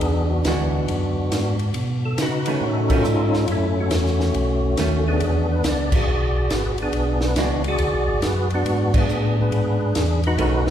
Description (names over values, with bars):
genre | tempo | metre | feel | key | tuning
soul jazz organ trio | 139 BPM | 4/4 | swing 65% on 8ths | unclear | A4 = 441 Hz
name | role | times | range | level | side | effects
percussive tonewheel organ | melody | 0.0-10.7 s | A3 to D5 | -23 LUFS | equal | slow rotary speaker, chorus vibrato
mellow tonewheel organ | bass | 0.0-10.7 s | G#1 to C#3 | -22 LUFS | equal | slow rotary speaker
compact cocktail drum kit | drums | 0.0-10.7 s | crash cymbal, hi-hat, kick drum, ride cymbal, snare drum | -26 LUFS | equal | none
vintage hollow-body jazz guitar | accompaniment | 0.5-7.6, 10.4-10.6 s | D#3 to F#4 | -29 LUFS | right 3 dB | none
room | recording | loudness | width
wet church reverb, RT60 2.9 s | recorded in a church or concert hall | -18 LUFS | side -10 dB against mid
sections
0.0-10.7 A section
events
band accent 2.8, 5.9, 8.9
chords
0.0 E9; 1.8 B9; 3.5 F#m7; 4.3 B9; 5.2 E9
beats
| 0.02 0.46 0.89 1.32 | 1.75 2.19 2.62 3.05 | 3.48 3.91 4.35 4.78 | 5.21 5.64 6.07 6.50 | 6.94 7.37 7.80 8.23 | 8.66 9.09 9.52 9.96 | 10.39